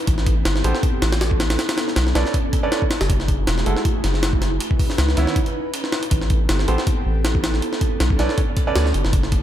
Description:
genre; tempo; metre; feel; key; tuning
drum and bass, jungle; 159 BPM; 4/4; swing 54% on 16ths; unclear; A4 = 439 Hz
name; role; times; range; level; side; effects
airy breathy pad; sustained chords; 0.0-9.4 s; A3 to B4; -28 LUFS; right 1 dB; chorus
soft dub sub bass; bass; 0.1-9.4 s; E1 to D2; -20 LUFS; equal; none
jungle sampler-style drum kit; drums; 0.1-9.4 s; hi-hat, kick drum, snare drum; -20 LUFS; equal; none
warm grand piano; stabs; 0.6-8.8 s; D#3 to D5; -26 LUFS; right 5 dB; dub echo
room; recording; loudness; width
digital ambience; none; -17 LUFS; side -11 dB against mid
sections
0.0-9.4 A section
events
none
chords
0.1 Am9; 1.6 Bm9; 3.1 F#m9; 4.6 C#m9; 6.1 Am9; 7.6 Bm9

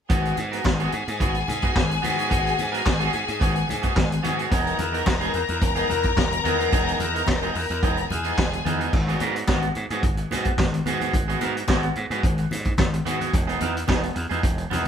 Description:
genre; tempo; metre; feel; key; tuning
disco; 109 BPM; 4/4; straight; G# minor; A4 = 444 Hz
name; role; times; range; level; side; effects
clear studio string section; second line; 0.1-8.9 s; G#4 to A#5; -27 LUFS; left 4 dB; none
electric guitar at the edge of break-up; accompaniment; 0.1-14.9 s; B3 to A#4; -27 LUFS; right 2 dB; spring reverb
gritty slap bass; bass; 0.1-14.9 s; E1 to G#2; -27 LUFS; equal; overdrive
vintage drum kit; drums; 0.1-14.9 s; crash cymbal, handclaps, hi-hat, kick drum, snare drum; -25 LUFS; equal; none
congas; percussion; 0.4-14.8 s; none; -33 LUFS; left 2 dB; none
room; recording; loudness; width
moderate studio reverb, RT60 0.6 s; band playing live in one room; -21 LUFS; side -8 dB against mid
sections
0.1-8.9 A section; 8.9-14.9 B section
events
none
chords
0.1 G#m7; 4.5 Emaj7; 8.9 G#m7; 13.3 Emaj7

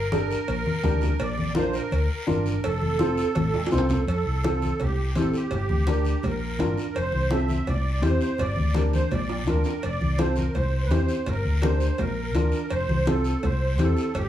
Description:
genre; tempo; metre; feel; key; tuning
latin, cumbia; 167 BPM; 4/4; straight; F major; A4 = 440 Hz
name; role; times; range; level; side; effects
musette accordion; second line; 0.0-14.3 s; G4 to E5; -30 LUFS; right 2 dB; none
hollow-body short-scale fingered electric bass; bass; 0.0-14.3 s; F1 to F2; -25 LUFS; equal; none
dark upright piano; accompaniment; 0.1-14.0 s; C4 to C5; -27 LUFS; left 1 dB; none
congas; percussion; 0.1-14.3 s; none; -30 LUFS; equal; none
guiro; percussion; 0.1-14.3 s; none; -42 LUFS; left 3 dB; none
cowbell and timbales; percussion; 0.5-14.3 s; none; -34 LUFS; right 3 dB; none
room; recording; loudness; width
wet studio reverb, RT60 0.8 s; heard from further back in the room; -22 LUFS; side -11 dB against mid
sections
0.0-4.1 A section; 4.1-14.3 B section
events
drum fill 3.0-4.1, 9.3-9.8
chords
0.0 Gm; 1.2 Bb; 2.6 F; 4.8 C; 5.5 Gm; 6.2 Bb; 7.0 F; 7.7 C; 8.4 Gm; 9.1 Bb; 9.8 F; 10.6 C; 11.3 Gm; 12.0 Bb; 12.7 F; 13.4 C

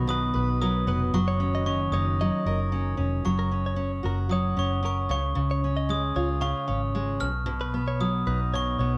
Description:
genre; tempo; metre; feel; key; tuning
acoustic pop; 114 BPM; 4/4; straight; F# major; A4 = 440 Hz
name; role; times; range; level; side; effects
glockenspiel with hard plastic mallets; second line; 0.0-9.0 s; B5 to E#6; -33 LUFS; equal; none
fingerpicked steel-string acoustic guitar; accompaniment; 0.0-9.0 s; B2 to B4; -31 LUFS; equal; none
glassy FM pad; sustained chords; 0.0-3.2 s; D#3 to F#4; -40 LUFS; equal; ensemble chorus, built-in reverb
vintage muted fingered electric bass; bass; 0.0-9.0 s; E#1 to C#2; -30 LUFS; equal; none
direct-recorded clean electric guitar; arpeggios; 0.1-8.9 s; A#4 to E#5; -38 LUFS; equal; none
room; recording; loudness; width
light reverb, small room ambience; cassette tape; -26 LUFS; mono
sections
0.0-3.3 A section; 3.3-9.0 B section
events
none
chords
0.0 B; 1.1 F#6; 3.3 F#; 5.1 C#; 7.2 B

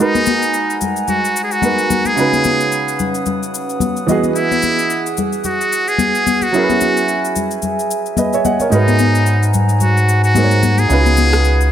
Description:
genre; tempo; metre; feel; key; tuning
amapiano; 110 BPM; 4/4; swing 58% on 16ths; G# minor; A4 = 440 Hz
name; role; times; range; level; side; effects
trumpet with metal mute; melody; 0.0-11.7 s; D#4 to G#4; -17 LUFS; equal; tape echo
clear concert grand piano; accompaniment; 0.0-11.7 s; C#3 to F#5; -20 LUFS; right 4 dB; none
glass harmonica; sustained chords; 0.0-11.7 s; G#3 to D#6; -22 LUFS; right 2 dB; stereo widening
electronic shaker and rim click; drums; 0.2-11.7 s; none; -25 LUFS; left 4 dB; none
congas; percussion; 0.2-11.3 s; none; -21 LUFS; left 7 dB; none
round analog bass; bass; 8.7-11.7 s; C#2 to G#2; -13 LUFS; equal; none
room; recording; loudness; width
light reverb, studio reverb; none; -13 LUFS; side -10 dB against mid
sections
0.0-11.7 A section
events
kick muted 8.7-9.8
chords
0.0 G#m9; 2.2 C#9sus4; 4.1 Emaj9; 6.5 F#9sus4; 8.7 G#m9; 10.9 C#9sus4

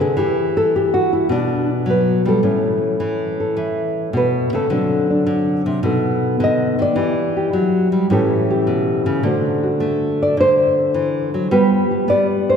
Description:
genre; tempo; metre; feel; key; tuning
solo jazz; 106 BPM; 4/4; swing 69% on 8ths; unclear; A4 = 440 Hz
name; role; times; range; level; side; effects
nylon-string guitar; solo; 0.0-12.6 s; A2 to D#5; -15 LUFS; equal; none
room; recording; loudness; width
wet church reverb, RT60 2.7 s; recorded in a church or concert hall; -15 LUFS; side -7 dB against mid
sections
0.0-9.2 A section; 9.2-12.6 B section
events
nylon-string guitar solo 0.0-9.2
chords
0.2 Em; 2.4 A; 4.7 D7; 5.8 B7#9; 7.0 Em7; 8.1 A7; 9.2 D7; 11.5 G7

